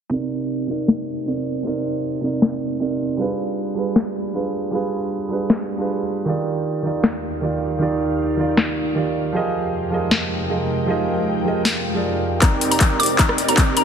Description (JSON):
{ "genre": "future bass", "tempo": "156 BPM", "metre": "4/4", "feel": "half-time", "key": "C minor", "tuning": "A4 = 441 Hz", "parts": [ { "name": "dark grand piano", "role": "accompaniment", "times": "0.1-13.8 s", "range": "C3 to Eb5", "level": "-22 LUFS", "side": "right 3 dB", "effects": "sidechain pumping, digital delay" }, { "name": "trap drum kit", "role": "drums", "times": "0.9-13.8 s", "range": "handclaps, hi-hat, rim click, snare drum", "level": "-20 LUFS", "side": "left 2 dB", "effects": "overdrive, low-pass filter on snare, studio reverb, low-pass filter on hats" }, { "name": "ethereal airy pad", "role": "sustained chords", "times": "7.0-13.8 s", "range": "Eb2 to G5", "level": "-27 LUFS", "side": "left 1 dB", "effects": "ensemble chorus, built-in reverb, sidechain pumping" }, { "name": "mallet-like synth pluck", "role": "melody", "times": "12.4-13.8 s", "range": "Bb5 to D6", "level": "-22 LUFS", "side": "left 2 dB", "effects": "chorus, phaser, sidechain pumping, ping-pong delay" }, { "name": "supersaw chords", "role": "riff", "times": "12.4-13.8 s", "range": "C4 to D5", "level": "-23 LUFS", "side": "right 1 dB", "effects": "phaser, sidechain pumping, low-pass filter" }, { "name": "electronic kick drum", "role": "drums", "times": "12.4-13.7 s", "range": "none", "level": "-16 LUFS", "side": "left 1 dB", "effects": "overdrive, studio reverb" } ], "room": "moderate lush hall reverb, RT60 2.3 s", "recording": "dense, heavily limited modern master, low-pass filter", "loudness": "-18 LUFS", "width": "side -7 dB against mid", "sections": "0.1-12.4 A section; 12.4-13.8 B section", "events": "filter sweep on drum 0.1-12.4; filter sweep 0.1-12.4; build-up 12.4-13.8; drum fill 12.4-13.8; filter sweep on supersaw synth 12.4-13.8; filter sweep on ambient pad 12.4-13.8", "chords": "0.1 Cm9; 3.2 G7b9; 6.3 Ebmaj9; 9.3 Fm11; 12.4 Cm9" }